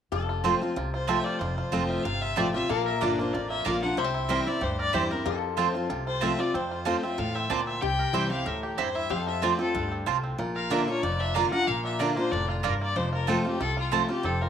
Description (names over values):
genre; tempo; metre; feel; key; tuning
bluegrass; 187 BPM; 4/4; swing 53% on 8ths; F major; A4 = 440 Hz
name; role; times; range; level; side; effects
bluegrass banjo; melody; 0.1-14.5 s; F3 to Bb4; -35 LUFS; right 3 dB; none
lap resonator guitar; second line; 0.1-10.2 s; G4 to C5; -35 LUFS; left 13 dB; none
picked steel-string acoustic guitar; accompaniment; 0.1-14.5 s; F2 to F4; -29 LUFS; left 1 dB; none
upright bass; bass; 0.1-14.5 s; F1 to F2; -34 LUFS; equal; none
mandolin; stabs; 0.4-14.0 s; Bb3 to Bb5; -30 LUFS; right 11 dB; none
clear fiddle; melody; 0.9-14.5 s; E4 to G5; -31 LUFS; left 3 dB; slapback echo
room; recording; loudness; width
moderate spring reverb, RT60 1.7 s, small room reverb; 1960s-style stereo with parts hard left and right; -25 LUFS; side -8 dB against mid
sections
0.1-10.4 A section; 10.4-14.5 B section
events
none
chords
0.1 F; 2.7 Bb; 4.0 C; 5.3 F; 7.8 C; 9.1 F; 10.4 Bb; 13.0 F